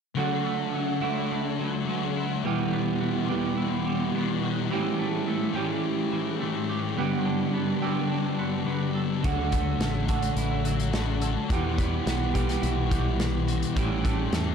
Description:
rock, shoegaze and dream pop; 106 BPM; 4/4; straight; D major; A4 = 440 Hz
thick fuzz guitar; riff; 0.1-14.5 s; E2 to D4; -28 LUFS; left 10 dB; distortion, analog chorus
twelve-string electric guitar; arpeggios; 0.2-14.5 s; E3 to A4; -35 LUFS; right 5 dB; lush chorus, slapback echo
overdriven electric guitar; riff; 0.2-14.5 s; E2 to G4; -29 LUFS; right 10 dB; reverse reverb
picked electric bass; bass; 9.2-14.5 s; A1 to E2; -28 LUFS; equal
loose indie drum kit; drums; 9.2-14.5 s; hi-hat, kick drum, snare drum; -30 LUFS; equal
small room ambience; dark, warm production; -24 LUFS; side -6 dB against mid
0.2-14.5 A section
0.2 Dadd9; 2.4 Em; 4.7 A5; 7.0 Gadd9; 9.2 Dadd9; 11.5 Emadd9; 13.8 A5

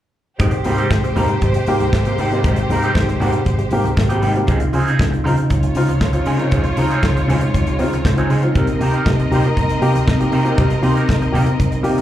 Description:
disco; 118 BPM; 4/4; straight; Ab major; A4 = 439 Hz
clear studio string section; second line; 0.4-12.0 s; Ab3 to Eb5; -24 LUFS; equal; slapback echo
electric guitar at the edge of break-up; accompaniment; 0.4-12.0 s; F3 to C5; -25 LUFS; right 2 dB; wah, slapback echo
warm grand piano; accompaniment; 0.4-12.0 s; Ab2 to G4; -23 LUFS; left 2 dB; slapback echo
percussive tonewheel organ; sustained chords; 0.4-12.0 s; C3 to G4; -24 LUFS; equal; chorus vibrato, fast rotary speaker
overdriven fingered electric bass; bass; 0.4-12.0 s; Ab1 to Db3; -19 LUFS; equal
modern studio drum kit; drums; 0.4-12.0 s; hi-hat, kick drum, snare drum; -21 LUFS; equal
congas; percussion; 0.4-12.0 s; -26 LUFS; left 2 dB
light reverb, studio reverb; live gig heard through the venue's PA, club reverb; -14 LUFS; side -12 dB against mid
0.4-12.0 A section
0.4 Abmaj7; 4.5 Dbmaj9; 8.6 Cm7

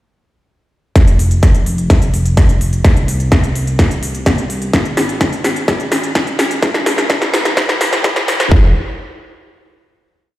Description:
EDM, festival progressive house; 127 BPM; 4/4; straight; A4 = 440 Hz
fat analog bass; bass; 1.0-8.7 s; Eb1 to C2; -18 LUFS; equal; sidechain pumping
big-room dance drum kit; drums; 1.0-8.5 s; hi-hat, snare drum; -16 LUFS; equal; high-pass filter on snare, high-pass filter on hats, high-pass filter on room
electronic kick drum; drums; 1.0-8.6 s; -12 LUFS; equal
moderate lush hall reverb, RT60 1.8 s; played on a big sound system in a bare room, stone room reverb, high-pass filter; -11 LUFS; side -15 dB against mid
1.0-8.5 build; 8.5-10.4 final note
build-up 1.0-8.5; drum fill 1.0-8.5; filter sweep 1.0-8.5

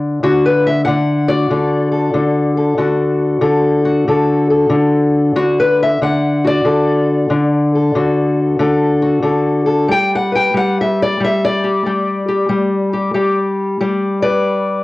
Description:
acoustic country blues, solo or duo; 93 BPM; 4/4; swing 66% on 8ths; D major; A4 = 440 Hz
fingerpicked steel-string acoustic guitar; solo; 0.0-14.8 s; D3 to G5; -12 LUFS; left 1 dB; cassette tape
light reverb; home recording on cassette; -12 LUFS; side -19 dB against mid
0.0-14.8 A section
steel-string acoustic guitar solo 0.0-14.8
0.0 D; 9.9 G

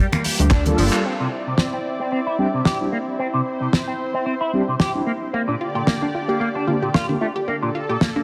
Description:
nu-disco, nu disco; 112 BPM; 4/4; swing 55% on 16ths; C mixolydian; A4 = 436 Hz
lush unison pad; sustained chords; 0.0-8.2 s; D3 to D5; -30 LUFS; equal; chorus, vintage 12-bit sampler grit, sidechain pumping
electric guitar with an envelope filter; riff; 0.0-8.2 s; G2 to G4; -27 LUFS; equal; analog chorus, low-pass filter, digital delay
damped 70s drum kit; drums; 0.1-8.1 s; finger snaps, handclaps, hi-hat, snare drum; -24 LUFS; equal
congas; percussion; 0.1-0.8 s; -28 LUFS; equal
chorused synth bass; bass; 0.4-0.9 s; G1 to D2; -21 LUFS; equal
kick drum; drums; 0.5-0.6 s; -20 LUFS; equal
mellow synth brass; accompaniment; 0.7-7.2 s; D3 to A4; -26 LUFS; equal; chorus, sidechain pumping, digital delay
unison pluck; arpeggios; 5.3-8.2 s; Bb3 to G4; -28 LUFS; equal; sidechain pumping, delay
moderate plate reverb, RT60 2.0 s, small room ambience; dense, heavily limited modern master; -21 LUFS; mono
0.0-1.1 A section; 1.1-8.2 B section
filter sweep on clean electric guitar 0.0-1.1, 1.1-8.2; drum fill 0.5-1.1; band accent 0.9
0.0 Gm7; 1.1 Cadd9; 5.3 Bb6

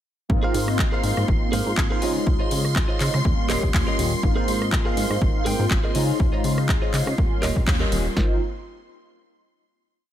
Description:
filtered disco house; 122 BPM; 4/4; swing 55% on 16ths; Ab major; A4 = 440 Hz
mellow synth brass; accompaniment; 0.3-8.4 s; G3 to F4; -27 LUFS; equal; chorus, phaser, sidechain pumping
phased string machine; sustained chords; 0.5-8.2 s; C6; -32 LUFS; equal; ensemble chorus, phaser, vintage 12-bit sampler grit, sidechain pumping
plucky analog bass; bass; 0.3-8.4 s; Eb1 to Db3; -25 LUFS; equal; sidechain pumping
house drum kit; drums; 0.3-8.3 s; kick drum, snare drum; -23 LUFS; equal
direct-recorded clean electric guitar; riff; 0.4-8.4 s; F4 to G5; -31 LUFS; right 2 dB; sidechain pumping
house drum kit; drums; 0.5-8.0 s; handclaps, hi-hat, rim click; -29 LUFS; left 1 dB; sidechain pumping on hats
little or no reverb; -19 LUFS; side -11 dB against mid
0.3-8.2 drop; 8.2-10.1 final chord
drop 0.3-8.2; band accent 7.7
0.3 Ab69; 2.0 Dbmaj9; 3.2 Eb7; 4.2 Ab69; 6.0 Dbmaj9; 7.2 Eb7; 8.2 Ab69

